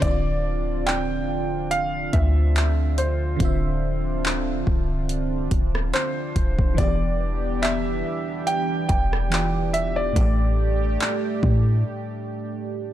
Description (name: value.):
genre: contemporary R&B.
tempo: 71 BPM.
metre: 4/4.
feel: swing 54% on 16ths.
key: D dorian.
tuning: A4 = 440 Hz.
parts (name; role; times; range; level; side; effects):
warm baby grand piano; melody; 0.0-12.7 s; C5 to G5; -29 LUFS; equal; digital delay.
FM electric piano; accompaniment; 0.0-12.9 s; A2 to E5; -29 LUFS; right 1 dB; chorus, phaser.
chorused pulse-width pad; sustained chords; 0.0-12.9 s; D3 to G4; -30 LUFS; right 2 dB; none.
clean 808-style bass; bass; 0.0-11.8 s; C1 to A2; -23 LUFS; equal; none.
smooth R&B drum kit; drums; 0.0-11.6 s; handclaps, hi-hat, kick drum, rim click; -25 LUFS; equal; overdrive.
room: little or no reverb.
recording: dark, warm production.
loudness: -20 LUFS.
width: side -12 dB against mid.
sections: 0.0-12.9 A section.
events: break 11.9-12.9.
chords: 0.0 Dm9; 6.8 Em7; 10.2 A7sus4.